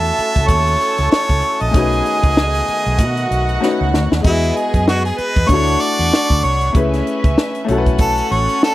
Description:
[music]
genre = lush 1970s-style soul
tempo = 96 BPM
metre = 4/4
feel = swing 58% on 16ths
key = E major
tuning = A4 = 440 Hz
[part]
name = clear harmonica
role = melody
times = 0.0-8.7 s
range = E4 to E5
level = -18 LUFS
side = equal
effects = none
[part]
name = warm studio violin section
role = second line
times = 0.0-8.7 s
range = B3 to C#6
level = -22 LUFS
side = right 1 dB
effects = none
[part]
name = clear grand piano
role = accompaniment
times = 0.0-8.7 s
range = G#3 to D#5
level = -22 LUFS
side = left 4 dB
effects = none
[part]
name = overdriven tonewheel organ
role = sustained chords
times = 0.0-4.2 s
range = D#3 to F#4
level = -28 LUFS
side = right 1 dB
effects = wide subtle chorus
[part]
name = vintage muted fingered electric bass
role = bass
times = 0.0-8.5 s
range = A1 to B2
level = -19 LUFS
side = equal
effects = none
[part]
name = compact cocktail drum kit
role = drums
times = 0.0-8.7 s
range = hi-hat, kick drum, snare drum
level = -16 LUFS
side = equal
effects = none
[sound]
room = studio ambience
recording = dry, close 1970s-style studio recording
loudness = -13 LUFS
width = side -15 dB against mid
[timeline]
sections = 0.0-4.2 A section; 4.2-8.7 B section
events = drum fill 3.6-4.2; harmonica solo 4.2-8.7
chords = 0.0 F#m7; 1.7 B7; 4.2 Emaj7; 5.5 Dmaj7; 6.7 Amaj9/C#; 7.7 B9sus4

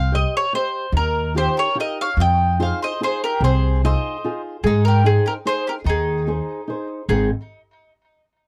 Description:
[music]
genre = italian folk, Italian serenade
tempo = 146 BPM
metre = 3/4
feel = straight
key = Ab major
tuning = A4 = 441 Hz
[part]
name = mandolin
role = melody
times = 0.0-7.3 s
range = Ab4 to G5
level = -24 LUFS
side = equal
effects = none
[part]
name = nylon-string guitar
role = accompaniment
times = 0.0-7.3 s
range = Ab2 to Eb5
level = -29 LUFS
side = equal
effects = none
[part]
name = upright bass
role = bass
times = 0.0-7.3 s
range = Ab1 to Ab2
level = -22 LUFS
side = equal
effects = none
[part]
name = mandolin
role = second line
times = 1.4-7.3 s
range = Eb4 to Eb5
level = -31 LUFS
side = equal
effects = tape echo
[sound]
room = light reverb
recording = dry, close 1970s-style studio recording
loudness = -20 LUFS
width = mono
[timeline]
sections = 0.0-7.1 A section; 7.1-8.3 B section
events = none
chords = 0.0 Cm; 0.9 Ebadd9; 2.2 Fm7; 4.6 Ab

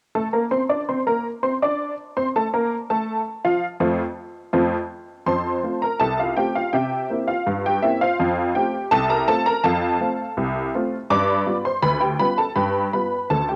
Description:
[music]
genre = ragtime piano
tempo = 82 BPM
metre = 2/4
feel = straight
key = F major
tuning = A4 = 441 Hz
[part]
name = honky-tonk upright piano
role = solo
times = 0.2-13.6 s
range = C2 to D6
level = -22 LUFS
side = equal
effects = cassette tape
[sound]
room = moderate spring reverb, RT60 2.4 s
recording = home recording on cassette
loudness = -22 LUFS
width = mono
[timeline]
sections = 0.0-5.3 A section; 5.3-13.6 B section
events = none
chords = 0.0 F; 6.7 C7; 8.2 F; 11.1 G7

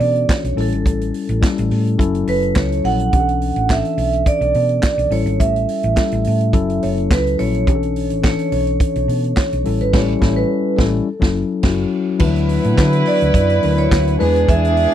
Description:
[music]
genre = disco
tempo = 106 BPM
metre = 4/4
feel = straight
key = B minor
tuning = A4 = 441 Hz
[part]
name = vibraphone with soft mallets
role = melody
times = 0.0-14.9 s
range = A4 to F#5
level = -20 LUFS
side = right 5 dB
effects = none
[part]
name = mellow tine electric piano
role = accompaniment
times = 0.0-14.9 s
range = E3 to B4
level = -20 LUFS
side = left 6 dB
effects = none
[part]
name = hollow-body short-scale fingered electric bass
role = bass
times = 0.0-14.9 s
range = F#1 to D3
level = -20 LUFS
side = equal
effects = none
[part]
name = vintage drum kit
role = drums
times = 0.0-14.9 s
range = crash cymbal, handclaps, hi-hat, kick drum, snare drum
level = -18 LUFS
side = right 1 dB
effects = none
[part]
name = dark studio violin section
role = second line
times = 12.2-14.9 s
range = D4 to B4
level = -22 LUFS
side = right 1 dB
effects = none
[part]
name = tonewheel organ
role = sustained chords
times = 12.2-14.9 s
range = D3 to G#4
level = -26 LUFS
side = right 2 dB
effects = overdrive, slow rotary speaker
[sound]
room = little or no reverb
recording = dry, close 1970s-style studio recording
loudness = -14 LUFS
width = side -10 dB against mid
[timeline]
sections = 0.0-12.2 A section; 12.2-14.9 B section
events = band accent 9.9-12.2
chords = 0.0 Bm11; 0.6 A7; 2.0 F#m7; 3.1 Bm11; 5.1 A7; 6.5 F#m7; 7.7 Bm11; 9.7 A7; 11.1 F#m7; 12.2 D69; 14.2 E7

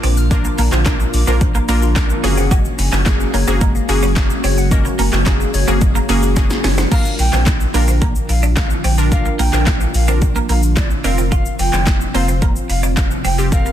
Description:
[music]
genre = dance-pop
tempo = 109 BPM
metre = 4/4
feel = straight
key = unclear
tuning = A4 = 440 Hz
[part]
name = glassy wavetable pluck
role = accompaniment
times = 0.0-13.7 s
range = Bb3 to C5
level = -22 LUFS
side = equal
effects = chorus, sidechain pumping
[part]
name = ethereal airy pad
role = sustained chords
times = 0.0-13.7 s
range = Bb2 to Gb4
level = -24 LUFS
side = equal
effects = ensemble chorus, built-in reverb, sidechain pumping
[part]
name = glassy wavetable pluck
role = arpeggios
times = 0.0-6.9 s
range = F3 to F6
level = -28 LUFS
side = left 2 dB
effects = chorus, sidechain pumping, digital delay
[part]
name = twelve-string electric guitar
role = riff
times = 0.0-13.7 s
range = Bb3 to Gb4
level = -25 LUFS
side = right 4 dB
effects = ensemble chorus
[part]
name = saturated sub bass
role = bass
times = 0.0-13.7 s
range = F1 to Bb1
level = -17 LUFS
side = equal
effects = sidechain pumping
[part]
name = deep house drum kit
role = drums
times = 0.0-13.7 s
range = crash cymbal, handclaps, hi-hat, kick drum, shaker, snare drum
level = -17 LUFS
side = equal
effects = overdrive
[part]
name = silver concert flute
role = melody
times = 6.9-13.7 s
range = D5 to G5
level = -26 LUFS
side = equal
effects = sidechain pumping, digital delay
[sound]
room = little or no reverb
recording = dense, heavily limited modern master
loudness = -13 LUFS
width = side -11 dB against mid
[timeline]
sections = 0.0-6.9 A section; 6.9-13.7 B section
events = drum fill 6.4-6.9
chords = 0.0 Bb; 2.2 Gbadd9; 6.9 Bb; 11.0 Fsus4

